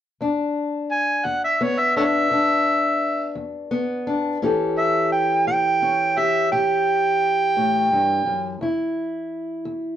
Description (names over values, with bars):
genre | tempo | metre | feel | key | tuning
acoustic country blues, solo or duo | 57 BPM (dotted quarters) | 12/8 | straight | unclear | A4 = 441 Hz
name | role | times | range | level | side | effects
fingerpicked steel-string acoustic guitar | accompaniment | 0.2-10.0 s | E2 to A4 | -23 LUFS | left 2 dB | none
overdriven harmonica | melody | 0.9-8.6 s | A4 to G#5 | -19 LUFS | right 2 dB | plate reverb
room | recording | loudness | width
moderate studio reverb, RT60 0.6 s | dark, warm production | -19 LUFS | side -10 dB against mid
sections
0.2-10.0 A section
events
none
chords
0.2 E5; 4.4 A7; 8.6 E5